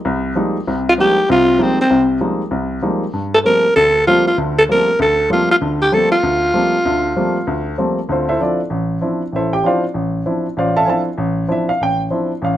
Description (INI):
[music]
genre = jazz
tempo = 194 BPM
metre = 4/4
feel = swing 61% on 8ths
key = D minor from 8.1 s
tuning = A4 = 442 Hz
[part]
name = warm baby grand piano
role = accompaniment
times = 0.1-12.6 s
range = A1 to A5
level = -17 LUFS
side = equal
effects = none
[part]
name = growling alto saxophone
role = melody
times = 0.9-7.7 s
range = C4 to Bb4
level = -13 LUFS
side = equal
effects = plate reverb
[sound]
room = light reverb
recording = close, detailed microphones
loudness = -14 LUFS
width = side -12 dB against mid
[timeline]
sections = 0.0-8.1 A section; 8.1-12.6 B section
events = none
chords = 0.0 Fm11; 3.1 Gm11; 8.1 Dm9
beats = 0.05 0.36 | 0.67 0.98 1.29 1.59 | 1.90 2.21 2.52 2.83 | 3.14 3.45 3.76 4.07 | 4.38 4.68 4.99 5.30 | 5.61 5.92 6.23 6.54 | 6.85 7.16 7.47 7.78 | 8.09 8.39 8.70 9.01 | 9.32 9.63 9.94 10.25 | 10.56 10.87 11.18 11.49 | 11.80 12.11 12.42